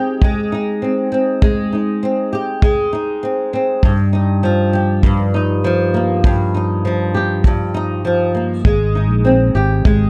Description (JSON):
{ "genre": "acoustic pop", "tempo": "100 BPM", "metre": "4/4", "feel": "straight", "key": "Ab major", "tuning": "A4 = 440 Hz", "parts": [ { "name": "flamenco guitar", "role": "accompaniment", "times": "0.0-10.1 s", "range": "G2 to G4", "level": "-18 LUFS", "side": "equal", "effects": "double-tracked" }, { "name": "kick drum", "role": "drums", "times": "0.2-10.0 s", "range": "none", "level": "-17 LUFS", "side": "equal", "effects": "none" }, { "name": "fingered electric bass", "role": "bass", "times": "8.6-10.1 s", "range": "Ab1 to Bb1", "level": "-18 LUFS", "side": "equal", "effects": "none" } ], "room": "moderate studio reverb, RT60 0.7 s", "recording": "dark, warm production", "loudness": "-16 LUFS", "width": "mono", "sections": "0.0-10.1 A section", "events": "none", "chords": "0.0 Abmaj7; 3.8 Ebadd9/G; 8.7 Abmaj7", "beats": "0.22 0.82 | 1.42 2.02 2.63 3.23 | 3.83 4.43 5.04 5.64 | 6.24 6.84 7.45 8.05 | 8.65 9.25 9.86" }